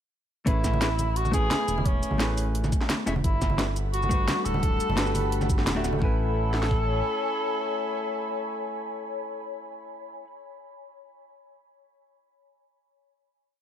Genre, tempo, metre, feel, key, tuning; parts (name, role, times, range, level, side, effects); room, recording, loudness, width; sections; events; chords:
liquid drum and bass; 173 BPM; 4/4; straight; A major; A4 = 440 Hz
warm tenor saxophone; melody; 0.5-9.6 s; C#4 to A4; -31 LUFS; left 1 dB; dub echo
hollow-body jazz guitar; accompaniment; 0.5-10.3 s; G3 to G#5; -32 LUFS; left 2 dB
smooth synth bass; bass; 0.5-7.0 s; D1 to A1; -28 LUFS; equal
drum and bass drum kit; drums; 0.5-6.8 s; kick drum, snare drum; -26 LUFS; equal; overdrive
drum and bass drum kit; drums; 0.5-5.9 s; hi-hat, shaker, snare drum; -30 LUFS; equal; overdrive
congas; percussion; 0.7-6.0 s; -34 LUFS; right 2 dB
ethereal airy pad; sustained chords; 3.7-9.6 s; A4 to B5; -33 LUFS; equal; ensemble chorus, built-in reverb, sidechain pumping
light reverb; -24 LUFS; side -10 dB against mid
0.5-6.0 drop; 6.0-8.8 final chord
drop 0.5-6.0
0.5 Amaj9; 3.2 Gmaj9; 6.0 Amaj9